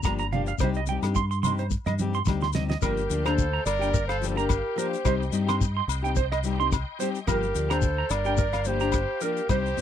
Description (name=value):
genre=highlife guitar band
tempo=108 BPM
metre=4/4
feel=swing 55% on 16ths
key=G minor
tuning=A4 = 441 Hz
part: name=picked steel-string acoustic guitar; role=accompaniment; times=0.0-9.8 s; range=F3 to G4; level=-30 LUFS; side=left 8 dB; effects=none
part: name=clean electric guitar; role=arpeggios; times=0.0-9.6 s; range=Bb4 to C6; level=-30 LUFS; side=right 11 dB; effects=lush chorus, slapback echo
part: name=shekere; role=percussion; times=0.0-9.8 s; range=none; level=-33 LUFS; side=left 7 dB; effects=none
part: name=deep dub fingered electric bass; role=bass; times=0.1-9.8 s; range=G1 to G2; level=-28 LUFS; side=equal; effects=none
part: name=damped 70s drum kit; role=drums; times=0.1-9.8 s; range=hi-hat, kick drum, rim click, snare drum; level=-28 LUFS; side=equal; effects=none
part: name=agogo bells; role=percussion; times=0.1-9.6 s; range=none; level=-37 LUFS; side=left 23 dB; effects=none
part: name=congas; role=percussion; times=0.3-2.7 s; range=none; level=-32 LUFS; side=right 5 dB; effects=none
part: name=breathy clarinet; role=melody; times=2.8-9.8 s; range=Bb4 to D5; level=-29 LUFS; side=right 3 dB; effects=none
part: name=clear trumpet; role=second line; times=2.8-9.8 s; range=G4 to Bb4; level=-34 LUFS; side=left 16 dB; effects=none
part: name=overdriven tonewheel organ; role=sustained chords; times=2.8-9.8 s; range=Eb5 to C6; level=-42 LUFS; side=equal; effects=slow rotary speaker, chorus vibrato
room=little or no reverb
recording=dry, close 1970s-style studio recording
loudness=-23 LUFS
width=side -10 dB against mid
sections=0.0-2.8 A section; 2.8-9.8 B section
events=drum fill 2.3-2.8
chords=0.0 Gm7; 0.6 Cm; 2.8 Gm7; 5.1 Cm; 7.3 Gm7